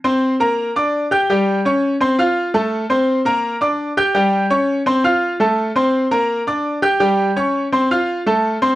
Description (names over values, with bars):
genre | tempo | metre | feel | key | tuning
latin | 168 BPM | 4/4 | straight | unclear | A4 = 440 Hz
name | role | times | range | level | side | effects
bright grand piano | solo | 0.0-8.8 s | G3 to G6 | -15 LUFS | equal | slapback echo
room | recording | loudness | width
light reverb | dry, close 1970s-style studio recording | -15 LUFS | side -16 dB against mid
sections
0.0-8.8 A section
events
none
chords
0.0 Bbsus2; 0.6 Gm; 1.3 N.C.; 2.0 Fadd11; 3.4 Gm; 4.2 N.C.; 4.9 Fadd11; 6.3 Gm; 7.0 N.C.; 7.7 F